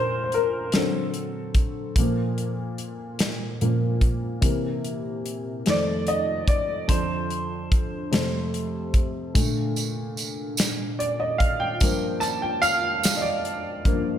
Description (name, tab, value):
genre	slow gospel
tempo	49 BPM (dotted quarters)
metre	6/8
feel	straight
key	Bb major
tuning	A4 = 440 Hz
part	warm upright piano	accompaniment	0.0-14.2 s	F2 to A5	-24 LUFS	equal	lush chorus
part	modern studio drum kit	drums	0.3-14.0 s	hi-hat, kick drum, snare drum	-24 LUFS	equal	none
part	tambourine	percussion	9.4-13.4 s	none	-31 LUFS	right 7 dB	none
room	moderate plate reverb, RT60 2.0 s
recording	dreamy mix soaked in reverb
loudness	-22 LUFS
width	side -10 dB against mid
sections	0.0-14.2 A section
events	upright piano solo 0.0-14.2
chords	0.0 Bbmaj7; 0.7 D7; 2.0 Bb5; 4.4 C7; 5.7 F7; 6.9 Dm7/F; 8.1 F; 9.3 Bbmaj7; 11.8 Gm7